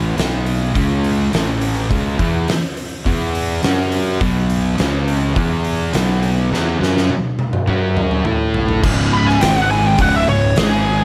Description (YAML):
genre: stoner and doom metal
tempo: 104 BPM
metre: 4/4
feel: straight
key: C# minor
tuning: A4 = 443 Hz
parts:
  - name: thick fuzz guitar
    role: riff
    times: 0.0-11.0 s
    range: C#2 to A4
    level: -24 LUFS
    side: equal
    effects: distortion
  - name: thick fuzz guitar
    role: riff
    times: 0.0-11.0 s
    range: C#2 to A4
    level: -24 LUFS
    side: equal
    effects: distortion
  - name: fuzz fingered electric bass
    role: bass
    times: 0.0-11.0 s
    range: C#1 to A2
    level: -23 LUFS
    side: equal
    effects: overdrive
  - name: oversized low-tuned drum kit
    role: drums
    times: 0.2-10.7 s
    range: crash cymbal, hi-hat, kick drum, snare drum, toms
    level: -23 LUFS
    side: equal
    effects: none
  - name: fuzz lead guitar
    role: melody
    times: 9.1-11.0 s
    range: G#4 to B5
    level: -19 LUFS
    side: equal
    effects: wah, distortion, analog delay
room: small room ambience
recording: none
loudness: -17 LUFS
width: mono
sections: 0.0-8.8 A section; 8.8-11.0 B section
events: drum fill 6.5-8.8; lead electric guitar solo 8.8-11.0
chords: 0.2 B5; 0.8 C#5; 1.3 A5; 3.1 E5; 3.6 F#5; 4.2 B5; 4.8 C#5; 5.4 E5; 5.9 B5; 7.7 F#5; 8.3 A5; 8.8 C#5; 9.4 G#5; 10.0 C#5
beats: 0.17 0.75 1.32 | 1.90 2.48 3.06 3.63 | 4.21 4.79 5.37 5.95 | 6.52 7.10 7.68 8.26 | 8.84 9.41 9.99 10.57